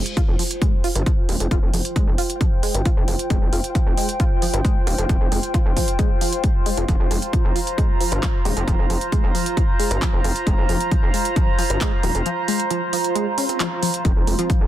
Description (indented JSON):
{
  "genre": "driving peak-time techno",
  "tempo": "134 BPM",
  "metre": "4/4",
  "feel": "straight",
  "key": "F minor",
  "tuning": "A4 = 440 Hz",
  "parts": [
    { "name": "tight sequenced synth", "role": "riff", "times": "0.0-14.6 s", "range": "F3 to F4", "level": "-28 LUFS", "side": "equal", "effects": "chorus, vintage 12-bit sampler grit, sidechain pumping, tape echo" },
    { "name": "warbly tape-like pad", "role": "texture", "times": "0.0-14.7 s", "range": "F4 to Bb5", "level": "-26 LUFS", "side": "right 1 dB", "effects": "chorus, built-in reverb, sidechain pumping" },
    { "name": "techno drum kit", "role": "drums", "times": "0.1-14.6 s", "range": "handclaps, hi-hat", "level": "-27 LUFS", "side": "right 1 dB", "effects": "sidechain pumping on hats, sidechain pumping on cymbals" },
    { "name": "electronic kick drum", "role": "drums", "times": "0.2-14.6 s", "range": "none", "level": "-20 LUFS", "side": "equal", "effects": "none" },
    { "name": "gritty driven synth bass", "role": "bass", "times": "0.3-14.7 s", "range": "Eb1 to G1", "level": "-23 LUFS", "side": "equal", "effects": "sidechain pumping" },
    { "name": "wavetable chord stab", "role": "stabs", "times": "14.4-14.5 s", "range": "F3 to F4", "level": "-24 LUFS", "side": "right 1 dB", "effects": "sidechain pumping" }
  ],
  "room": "little or no reverb",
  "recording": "dense, heavily limited modern master",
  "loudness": "-18 LUFS",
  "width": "side -13 dB against mid",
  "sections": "0.0-14.7 A section",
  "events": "break 12.3-14.0",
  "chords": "0.0 F5"
}